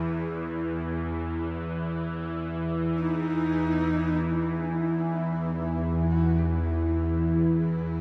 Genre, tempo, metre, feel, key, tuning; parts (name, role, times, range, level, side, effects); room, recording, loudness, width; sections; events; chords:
dark ambient drone; free time; A4 = 442 Hz
bowed-like drone; drone; 0.0-8.0 s; E2 to E3; -28 LUFS; equal; built-in reverb, phaser
clear horsehead fiddle; melody; 3.0-8.0 s; D#4 to G4; -34 LUFS; equal; diffuse ambient delay
wet huge ambient reverb, RT60 8.2 s; dark, warm production; -27 LUFS; mono
0.0-4.3 A section; 4.3-8.0 B section